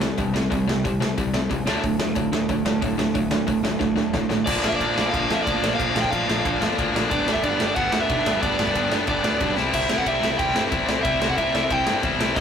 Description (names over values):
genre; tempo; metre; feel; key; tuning
punk rock; 183 BPM; 4/4; straight; unclear; A4 = 440 Hz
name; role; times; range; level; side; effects
distorted electric guitar; riff; 0.0-12.4 s; G2 to Eb4; -27 LUFS; right 6 dB; distortion
tight distorted guitar; riff; 0.0-12.4 s; G2 to E4; -24 LUFS; left 5 dB; distortion
fuzz picked electric bass; bass; 0.0-12.4 s; G1 to A2; -31 LUFS; equal; overdrive
big rock drum kit; drums; 0.0-12.4 s; crash cymbal, hi-hat, kick drum, ride cymbal, snare drum; -26 LUFS; equal; none
overdriven semi-hollow guitar; melody; 4.5-12.4 s; D5 to G5; -25 LUFS; right 2 dB; none
room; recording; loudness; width
moderate small room reverb, RT60 0.5 s; rough rehearsal-room recording, tube saturation; -20 LUFS; side -8 dB against mid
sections
0.0-4.5 A section; 4.5-12.4 B section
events
drum fill 3.8-4.5, 9.6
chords
0.0 C5; 1.7 D; 4.5 Bb; 7.1 G; 9.6 C